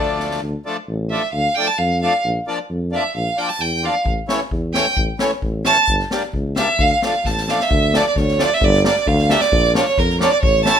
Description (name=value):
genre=klezmer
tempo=132 BPM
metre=2/4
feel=straight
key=D harmonic minor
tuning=A4 = 440 Hz
part: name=clear violin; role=melody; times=0.0-10.8 s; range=Bb4 to A5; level=-17 LUFS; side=right 3 dB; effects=none
part: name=accordion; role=accompaniment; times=0.0-10.8 s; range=E3 to E4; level=-23 LUFS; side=left 2 dB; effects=none
part: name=mellow tuba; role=bass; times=0.0-10.7 s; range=G1 to F2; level=-21 LUFS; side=equal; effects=none
part: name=street-band drum kit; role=drums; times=0.2-0.4, 4.1-10.8 s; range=kick drum, snare drum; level=-22 LUFS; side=left 2 dB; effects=none
room=light reverb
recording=minimal, uncompressed stereo recording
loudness=-16 LUFS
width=side -8 dB against mid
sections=0.4-7.7 A section; 7.7-10.8 B section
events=drum fill 0.2, 7.3-7.7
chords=0.4 Dm; 2.2 Bb; 4.1 A; 5.9 Gm; 6.8 Dm; 8.6 Gm; 9.5 Bb